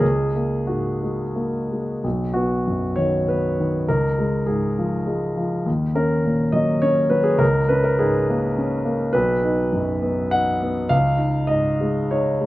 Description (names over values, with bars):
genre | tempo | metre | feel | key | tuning
neoclassical minimalist piano | 88-106 BPM | 3/4 | rubato | unclear | A4 = 437 Hz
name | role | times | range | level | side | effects
dark concert grand piano | solo | 0.0-12.5 s | B1 to F#5 | -18 LUFS | equal | none
room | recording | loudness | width
light reverb | recorded outdoors, with no room sound | -19 LUFS | side -17 dB against mid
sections
0.0-2.0 A section; 2.0-12.5 A section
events
none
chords
0.0 F#add9/C#; 2.0 B; 3.9 C#; 5.7 D#m7; 7.4 A#m7/C#; 9.1 B; 10.9 C#add9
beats
| 0.03 0.70 1.38 | 2.04 2.66 3.26 | 3.87 4.47 5.07 | 5.66 6.25 6.84 | 7.42 8.00 8.56 | 9.13 9.71 10.33 | 10.92 11.50 12.10